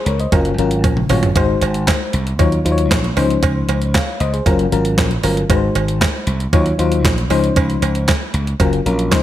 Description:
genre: early-eighties boogie funk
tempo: 116 BPM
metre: 4/4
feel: straight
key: unclear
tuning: A4 = 441 Hz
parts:
  - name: FM electric piano with auto-pan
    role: accompaniment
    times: 0.0-9.2 s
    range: Fb3 to F5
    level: -19 LUFS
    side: left 4 dB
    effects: none
  - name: slap bass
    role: bass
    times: 0.1-9.2 s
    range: Gb1 to Eb2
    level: -18 LUFS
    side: equal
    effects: none
  - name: crisp 8-bit digital drum machine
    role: drums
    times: 0.1-9.2 s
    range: handclaps, hi-hat, kick drum, snare drum, toms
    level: -18 LUFS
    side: right 1 dB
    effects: gated reverb
  - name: cowbell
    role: percussion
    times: 0.3-9.2 s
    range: none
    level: -24 LUFS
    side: right 9 dB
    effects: none
room: digital ambience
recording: none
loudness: -14 LUFS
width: side -12 dB against mid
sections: 0.0-9.2 A section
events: drum fill 0.8-1.4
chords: 0.3 Gbmaj7; 1.4 Ab7; 2.4 Ebm9; 3.2 Dbmaj9; 4.5 Gbmaj7; 5.5 Ab7; 6.5 Ebm9; 7.3 Dbmaj9; 8.6 Gbmaj7

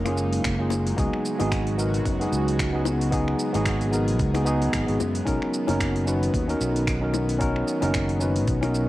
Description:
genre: sunset chillout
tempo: 112 BPM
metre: 4/4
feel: swing 57% on 16ths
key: unclear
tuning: A4 = 440 Hz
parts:
  - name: tine electric piano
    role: accompaniment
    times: 0.0-8.9 s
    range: A#3 to B4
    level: -26 LUFS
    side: equal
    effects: overdrive, auto-pan, cassette tape, analog delay
  - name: airy breathy pad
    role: sustained chords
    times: 0.0-8.9 s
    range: C#3 to G#4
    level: -30 LUFS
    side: equal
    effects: chorus, vintage 12-bit sampler grit, cassette tape
  - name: sustaining fretless electric bass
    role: bass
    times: 0.0-8.9 s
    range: F#1 to F#2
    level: -26 LUFS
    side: equal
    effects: tube saturation, wide subtle chorus
  - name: deep house drum kit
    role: drums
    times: 0.1-8.9 s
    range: finger snaps, hi-hat, shaker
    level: -33 LUFS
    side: right 1 dB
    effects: overdrive
  - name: bongos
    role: percussion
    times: 0.1-8.7 s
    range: none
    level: -32 LUFS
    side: left 8 dB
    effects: none
  - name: electronic kick drum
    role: drums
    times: 0.4-8.6 s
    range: none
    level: -29 LUFS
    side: equal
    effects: overdrive
room: light reverb, digital ambience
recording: home recording on cassette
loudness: -22 LUFS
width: side -16 dB against mid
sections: 0.0-8.9 A section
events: none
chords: 0.0 F#maj9; 1.0 C#7sus4; 5.3 Bmaj7

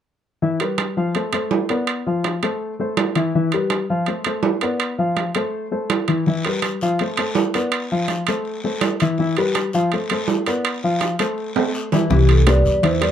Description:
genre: Afro-Cuban jazz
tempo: 164 BPM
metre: 4/4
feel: straight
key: unclear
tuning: A4 = 435 Hz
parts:
  - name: warm baby grand piano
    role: accompaniment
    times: 0.4-13.1 s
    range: E3 to F5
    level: -20 LUFS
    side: left 2 dB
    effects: none
  - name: timbales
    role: percussion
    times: 0.6-13.1 s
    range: none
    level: -22 LUFS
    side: right 6 dB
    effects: none
  - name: guiro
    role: percussion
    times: 6.3-13.1 s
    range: none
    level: -32 LUFS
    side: left 3 dB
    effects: none
  - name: vibraphone with soft mallets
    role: melody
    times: 12.1-13.1 s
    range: G4 to D5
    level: -20 LUFS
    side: left 1 dB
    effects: none
  - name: upright bass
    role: bass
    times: 12.1-13.1 s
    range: C2 to E2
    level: -15 LUFS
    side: right 1 dB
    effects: none
  - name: bongos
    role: percussion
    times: 12.1-13.0 s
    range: none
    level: -28 LUFS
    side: left 6 dB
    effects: none
  - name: congas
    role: percussion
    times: 12.1-13.1 s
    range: none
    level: -28 LUFS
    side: equal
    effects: none
room: light reverb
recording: dark, warm production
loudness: -18 LUFS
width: side -9 dB against mid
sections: 0.4-12.1 A section; 12.1-13.1 B section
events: drum fill 11.6-12.1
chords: 0.4 Em; 1.1 D5; 1.9 F6; 2.6 Am; 3.3 Em; 4.1 D5; 4.8 F6; 5.5 Am; 6.3 Em; 7.0 D5; 7.7 F6; 8.5 Am; 9.2 Em; 9.9 D5; 10.6 F6; 11.4 Am; 12.1 Cmaj9

